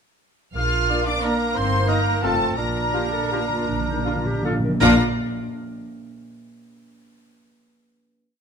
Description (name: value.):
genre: classical, orchestral ballroom waltz.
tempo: 149-197 BPM.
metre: 3/4.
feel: rubato.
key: Bb major.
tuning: A4 = 444 Hz.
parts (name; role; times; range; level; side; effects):
rich studio violin section; melody; 0.6-5.0 s; A5 to F6; -28 LUFS; left 4 dB; none.
large flute ensemble; second line; 0.6-5.0 s; F5 to F6; -29 LUFS; right 2 dB; none.
mellow oboe; second line; 0.6-5.0 s; A4 to F5; -31 LUFS; right 2 dB; none.
warm clarinet; second line; 0.6-5.0 s; D4 to Bb4; -32 LUFS; left 2 dB; none.
warm studio violin section; second line; 0.6-5.0 s; A4 to F5; -32 LUFS; left 2 dB; none.
warm bassoon; accompaniment; 0.6-5.0 s; Bb3 to D4; -30 LUFS; right 2 dB; none.
dark studio double bass section; bass; 0.6-5.0 s; F1 to Bb1; -26 LUFS; right 1 dB; none.
rich studio cello section; bass; 0.6-5.0 s; A3 to F4; -27 LUFS; equal; none.
rich studio viola section; accompaniment; 0.9-5.0 s; Bb3 to F4; -30 LUFS; right 1 dB; none.
mellow French horn section; sustained chords; 0.9-5.0 s; Bb3 to Bb4; -31 LUFS; left 7 dB; none.
warm trumpet; stabs; 0.9-5.0 s; D5 to F5; -32 LUFS; right 3 dB; none.
timpani; percussion; 2.6-5.0 s; Bb2; -27 LUFS; equal; none.
room: moderate recital hall reverb, RT60 1.6 s.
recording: none.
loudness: -19 LUFS.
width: side -6 dB against mid.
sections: 0.6-4.8 A section; 4.8-5.9 final chord.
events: slowing down 2.1-4.8; timpani fill 2.6-4.8.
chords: 0.6 Bb; 1.6 Eb/G; 2.2 F; 2.6 Bb.